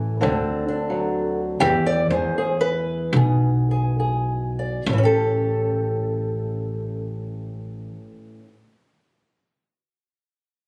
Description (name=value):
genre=acoustic country blues, solo or duo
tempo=65-90 BPM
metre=4/4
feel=swing 67% on 8ths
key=A mixolydian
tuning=A4 = 441 Hz
part: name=fingerpicked old ladder-braced acoustic guitar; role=melody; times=0.0-8.5 s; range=A2 to D5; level=-26 LUFS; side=equal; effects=none
part: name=upright bass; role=bass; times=0.0-7.9 s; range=A1 to E2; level=-26 LUFS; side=equal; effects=none
room=light reverb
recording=recorded on a phone in the room, club reverb, compression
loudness=-22 LUFS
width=mono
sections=0.0-4.9 A section; 4.9-8.6 B section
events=slowing down 0.0-4.9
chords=0.2 D7; 1.6 E; 4.9 A7